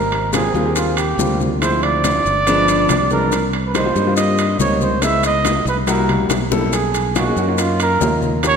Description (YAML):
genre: Afro-Cuban jazz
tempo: 141 BPM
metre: 4/4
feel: straight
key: unclear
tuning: A4 = 440 Hz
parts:
  - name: breathy trumpet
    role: melody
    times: 0.0-8.6 s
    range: E#4 to Fb5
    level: -19 LUFS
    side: right 3 dB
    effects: none
  - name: modern bright fingered electric bass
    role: bass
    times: 0.0-8.6 s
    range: G1 to G2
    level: -21 LUFS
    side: equal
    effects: none
  - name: bongos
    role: percussion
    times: 0.1-8.6 s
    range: none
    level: -28 LUFS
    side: left 8 dB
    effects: none
  - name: congas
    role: percussion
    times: 0.1-8.6 s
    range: none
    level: -27 LUFS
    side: left 2 dB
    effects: none
  - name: timbales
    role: percussion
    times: 0.1-8.6 s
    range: none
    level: -26 LUFS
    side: right 5 dB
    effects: none
  - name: warm baby grand piano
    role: accompaniment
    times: 0.3-8.6 s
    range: F3 to A4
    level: -20 LUFS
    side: left 2 dB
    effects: none
  - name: maracas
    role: percussion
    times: 0.3-8.6 s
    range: none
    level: -30 LUFS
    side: left 6 dB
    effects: none
room: wet concert hall reverb, RT60 2.1 s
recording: none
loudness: -14 LUFS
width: side -6 dB against mid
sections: 0.0-8.6 A section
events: drum fill 6.1-6.7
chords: 0.0 Abmaj13; 1.6 Dm7b5; 2.5 G7b9; 3.3 Cm7; 5.0 Dbm9; 5.9 C7#11; 6.7 Bmaj9#11